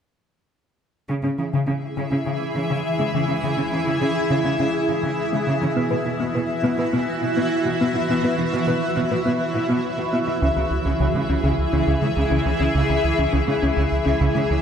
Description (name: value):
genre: cinematic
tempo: 103 BPM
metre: 4/4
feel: straight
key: C# minor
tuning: A4 = 441 Hz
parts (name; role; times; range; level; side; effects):
- granular cloud pad; sustained chords; 1.5-14.6 s; E3 to E5; -22 LUFS; equal; built-in reverb
- thumb-piano-like synth pluck; arpeggios; 1.1-14.6 s; C#3 to B4; -26 LUFS; left 2 dB; chorus, tape echo
- rich symphonic cello section; bass; 1.1-14.6 s; B2 to C#3; -26 LUFS; right 3 dB; none
- round analog bass; riff; 10.4-14.6 s; C#2 to C#3; -23 LUFS; right 1 dB; none
room: moderate scoring stage reverb, RT60 1.8 s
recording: none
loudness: -19 LUFS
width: side -8 dB against mid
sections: 1.1-10.4 A section; 10.4-14.6 B section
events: build-up 10.4-14.6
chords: 1.1 C#m; 5.8 Bsus4; 10.4 C#m